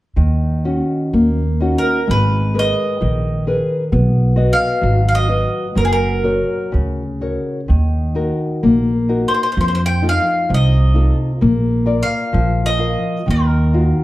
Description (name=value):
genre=fado-style ballad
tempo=64 BPM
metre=2/4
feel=uneven beats, rubato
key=Eb minor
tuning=A4 = 440 Hz
part: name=nylon-string guitar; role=accompaniment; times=0.2-14.0 s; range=C3 to F5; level=-19 LUFS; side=left 2 dB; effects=none
part: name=upright bass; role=bass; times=0.2-13.9 s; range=Gb1 to F2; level=-16 LUFS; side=right 1 dB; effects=none
part: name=bowl-back mandolin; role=melody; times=1.8-14.0 s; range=Ab4 to G5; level=-19 LUFS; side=right 1 dB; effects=none
room=wet recital hall reverb, RT60 1.3 s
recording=dark, warm production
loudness=-14 LUFS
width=side -16 dB against mid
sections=0.2-14.0 A section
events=none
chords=0.2 Ebm7; 2.1 Abmadd9; 3.9 B; 5.8 Gb; 7.7 Ebm; 9.6 F7; 11.4 Bb; 13.3 Ebmadd9